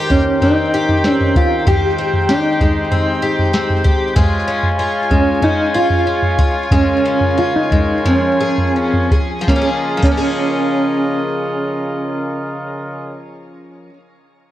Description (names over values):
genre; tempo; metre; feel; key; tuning
dream pop; 82-96 BPM; 4/4; straight; Db lydian; A4 = 440 Hz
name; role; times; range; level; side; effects
bright brass ensemble; sustained chords; 0.0-13.2 s; Db3 to Ab5; -21 LUFS; equal; shimmer reverb
picked twelve-string acoustic guitar; arpeggios; 0.0-14.0 s; Eb3 to Ab4; -21 LUFS; left 2 dB; lush chorus, digital delay, shimmer reverb
mellow electric guitar; melody; 0.1-13.9 s; Db4 to G4; -17 LUFS; equal; tremolo, digital delay, shimmer reverb
soft vintage rhythm box; drums; 0.1-10.2 s; crash cymbal, kick drum, snare drum, toms; -16 LUFS; equal; none
room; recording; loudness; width
moderate scoring stage reverb, RT60 1.9 s; worn, warbling old tape, cassette tape, warbly pitch drift; -13 LUFS; side -13 dB against mid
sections
0.0-9.5 A section; 9.5-12.4 B section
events
slowing down 4.2-9.5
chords
0.0 Cm7; 1.7 Abmaj7; 4.2 Db; 6.7 Bbm7/Db; 8.1 Db6